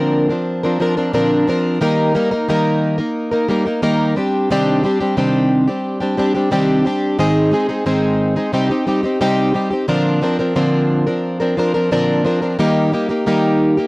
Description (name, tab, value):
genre	pop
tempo	89 BPM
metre	4/4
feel	straight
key	unclear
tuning	A4 = 440 Hz
part	fingerpicked plugged-in twelve-string acoustic guitar	solo	0.0-13.9 s	Ab2 to Bb4	-14 LUFS	equal	none
room	little or no reverb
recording	dry, close 1970s-style studio recording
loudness	-14 LUFS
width	side -23 dB against mid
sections	0.0-9.9 A section; 9.9-13.9 A section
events	none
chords	0.0 Bbadd9; 1.8 Eb; 4.2 Cmadd9; 7.2 Ab; 8.5 Cm; 9.9 Bbadd9; 12.6 Eb